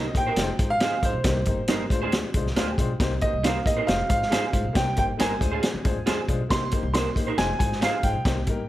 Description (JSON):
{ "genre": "uptempo 1960s-style soul", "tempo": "137 BPM", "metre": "4/4", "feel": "straight", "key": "C minor", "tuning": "A4 = 440 Hz", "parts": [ { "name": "clear baby grand piano", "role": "melody", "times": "0.0-8.7 s", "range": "C5 to C6", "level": "-28 LUFS", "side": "right 1 dB", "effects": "none" }, { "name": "warm upright piano", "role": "accompaniment", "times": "0.0-8.6 s", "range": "Ab3 to G5", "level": "-31 LUFS", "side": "left 5 dB", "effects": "none" }, { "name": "electric guitar through a small old amp", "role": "stabs", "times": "0.0-7.9 s", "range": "Eb4 to C5", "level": "-30 LUFS", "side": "right 6 dB", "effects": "ensemble chorus" }, { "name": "upright bass", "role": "bass", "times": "0.0-8.6 s", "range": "F1 to D3", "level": "-30 LUFS", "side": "equal", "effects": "none" }, { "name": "vintage drum kit", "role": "drums", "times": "0.1-8.6 s", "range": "hi-hat, kick drum, snare drum", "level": "-25 LUFS", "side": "equal", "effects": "none" } ], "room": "light reverb", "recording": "none", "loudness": "-22 LUFS", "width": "side -14 dB against mid", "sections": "0.0-8.7 A section", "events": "upright piano fill 2.3-3.0", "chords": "0.4 Fm7; 1.2 Cm7; 1.9 Dm7b5; 3.0 Cm7; 3.9 Fm7; 4.8 Cm7; 5.4 Dm7b5; 6.5 Cm7; 7.4 Fm7" }